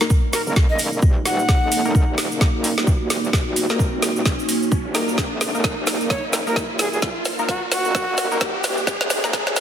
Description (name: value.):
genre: bass house.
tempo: 130 BPM.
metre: 4/4.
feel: swing 59% on 16ths.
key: Eb minor.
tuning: A4 = 439 Hz.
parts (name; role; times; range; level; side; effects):
dark analog pad; sustained chords; 0.0-9.6 s; Bb3 to Db5; -27 LUFS; right 2 dB; chorus, phaser, sidechain pumping.
band-passed chord stab; stabs; 0.0-9.3 s; Bb3 to Bb4; -27 LUFS; left 2 dB; chorus, sidechain pumping, ping-pong delay.
garage drum kit; drums; 0.0-9.6 s; hi-hat, snare drum; -23 LUFS; equal; soft clipping on snare.
cabasa; percussion; 0.0-9.6 s; none; -31 LUFS; right 3 dB; none.
riser; sound effects; 0.0-9.6 s; none; -30 LUFS; equal; none.
electronic kick drum; drums; 0.1-9.4 s; none; -19 LUFS; equal; none.
breathy bright jazz flute; melody; 0.3-1.9, 6.1-8.4 s; Gb4 to Gb5; -25 LUFS; left 1 dB; ping-pong delay.
metallic wobble bass; bass; 0.5-9.6 s; Eb1 to Gb1; -28 LUFS; equal; chorus, tube saturation, sidechain pumping, high-pass filter.
room: moderate lush hall reverb, RT60 1.6 s.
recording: dense, heavily limited modern master, high-pass filter.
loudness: -18 LUFS.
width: side -9 dB against mid.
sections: 0.0-9.6 A section.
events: build-up 0.0-9.6; drum fill 0.0-9.6; riser 0.0-9.6; filter sweep on synth stab 0.0-9.6; filter sweep 0.0-9.6.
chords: 0.0 Eb5.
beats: 0.10 0.56 1.02 | 1.49 1.95 2.41 2.87 | 3.33 3.79 4.26 4.72 | 5.18 5.64 6.10 6.56 | 7.03 7.49 7.95 8.41 | 8.87 9.33.